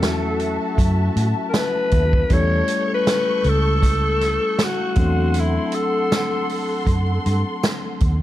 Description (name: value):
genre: lush 1970s-style soul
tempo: 79 BPM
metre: 4/4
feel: swing 54% on 16ths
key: unclear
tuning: A4 = 440 Hz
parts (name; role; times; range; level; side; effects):
- raspy alto saxophone; melody; 0.0-6.9 s; E4 to C#5; -22 LUFS; left 2 dB; none
- dark symphonic string section; second line; 0.0-8.2 s; F#4 to G6; -28 LUFS; equal; none
- barky tine electric piano; accompaniment; 0.0-8.2 s; F#3 to A4; -26 LUFS; left 3 dB; overdrive
- vintage muted fingered electric bass; bass; 0.0-8.2 s; C#2 to A2; -20 LUFS; equal; none
- vintage drum kit; drums; 0.0-8.2 s; hi-hat, kick drum, snare drum; -22 LUFS; right 1 dB; none
- tambourine; percussion; 0.0-7.8 s; none; -39 LUFS; right 5 dB; none
room: light reverb, small room ambience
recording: dark, warm production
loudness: -17 LUFS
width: side -14 dB against mid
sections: 0.0-8.2 A section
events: none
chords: 0.0 F#m7/E; 2.3 A7; 5.0 D7/E